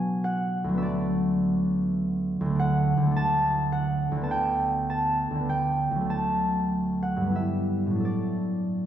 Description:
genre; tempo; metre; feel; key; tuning
classical, solo harp piece; 81-108 BPM; 3/4; rubato; D major; A4 = 439 Hz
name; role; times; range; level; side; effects
concert harp; solo; 0.0-8.9 s; D2 to A5; -23 LUFS; right 1 dB; none
room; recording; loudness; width
wet scoring stage reverb, RT60 1.7 s; heard from further back in the room; -23 LUFS; side -10 dB against mid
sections
0.0-8.9 A section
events
none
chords
0.0 Bm; 0.8 Bm/D; 4.3 G/D; 7.4 Em/G; 8.1 D/A

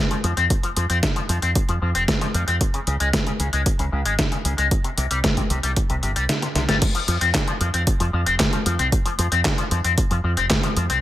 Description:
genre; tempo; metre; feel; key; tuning
italo disco; 114 BPM; 4/4; straight; F minor; A4 = 437 Hz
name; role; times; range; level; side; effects
electric guitar with an envelope filter; arpeggios; 0.1-11.0 s; C3 to C4; -24 LUFS; left 4 dB; lush chorus, digital delay
detuned 8-bit digital drum machine; drums; 0.1-11.0 s; crash cymbal, handclaps, hi-hat, snare drum; -23 LUFS; equal; overdrive, gated reverb
fingered electric bass with an envelope filter; bass; 0.2-11.0 s; F1 to F2; -24 LUFS; equal; tube saturation
electronic kick drum; drums; 0.5-10.6 s; none; -22 LUFS; equal; none
room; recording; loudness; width
light reverb; none; -19 LUFS; side -14 dB against mid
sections
0.0-6.8 A section; 6.8-11.0 B section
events
kick drops out 6.3-6.8; drum fill 6.6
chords
0.0 F5; 2.6 Db5; 4.7 C5; 6.8 F5

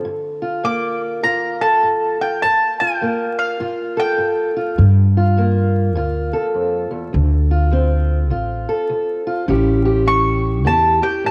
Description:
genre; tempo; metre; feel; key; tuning
acoustic country blues, solo or duo; 102 BPM; 4/4; swing 63% on 8ths; unclear; A4 = 440 Hz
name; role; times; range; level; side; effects
fingerpicked steel-string acoustic guitar; accompaniment; 0.0-11.3 s; D2 to A4; -23 LUFS; equal; cassette tape
mandolin; melody; 0.6-4.5, 10.1-11.3 s; F5 to D6; -20 LUFS; equal; cassette tape
upright bass; bass; 4.8-11.0 s; A1 to G2; -18 LUFS; equal; none
room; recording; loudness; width
light reverb, small room ambience; home recording on cassette, vinyl crackle; -18 LUFS; mono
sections
0.0-11.3 A section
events
none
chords
0.1 Gm9; 7.1 Dm7; 9.5 A7

